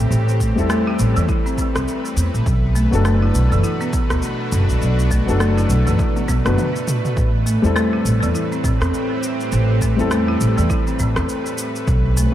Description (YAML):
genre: organic downtempo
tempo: 102 BPM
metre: 4/4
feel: swing 58% on 16ths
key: A dorian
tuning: A4 = 441 Hz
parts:
  - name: felt-muted upright piano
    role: accompaniment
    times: 0.0-12.3 s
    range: F#3 to B4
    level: -24 LUFS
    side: left 4 dB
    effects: sidechain pumping, analog delay
  - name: bowed-like drone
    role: sustained chords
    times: 0.0-12.3 s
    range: A2 to B4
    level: -25 LUFS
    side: equal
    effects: built-in reverb, sidechain pumping
  - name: upright bass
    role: bass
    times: 0.0-12.3 s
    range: F#1 to E2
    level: -18 LUFS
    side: equal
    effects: sidechain pumping
  - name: deep house drum kit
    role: drums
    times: 0.1-12.3 s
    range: rim click, shaker, toms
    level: -27 LUFS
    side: equal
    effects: studio reverb
  - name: folk marimba with medium hard mallets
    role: arpeggios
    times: 0.4-12.3 s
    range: E3 to E4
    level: -24 LUFS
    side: equal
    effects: dub echo
  - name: electronic kick drum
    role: drums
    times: 0.4-12.0 s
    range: none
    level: -21 LUFS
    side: equal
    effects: studio reverb
room: light reverb, studio ambience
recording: echo-heavy mix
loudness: -16 LUFS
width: side -12 dB against mid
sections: 0.0-7.2 A section; 7.2-12.3 B section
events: filter sweep on marimba 0.0-7.2; drum fill 6.0-7.2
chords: 0.0 Am7; 2.5 Bm7; 7.2 Am7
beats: | 0.11 0.70 1.29 1.88 | 2.46 3.05 3.64 4.23 | 4.82 5.41 5.99 6.58 | 7.17 7.76 8.35 8.94 | 9.52 10.11 10.70 11.29 | 11.88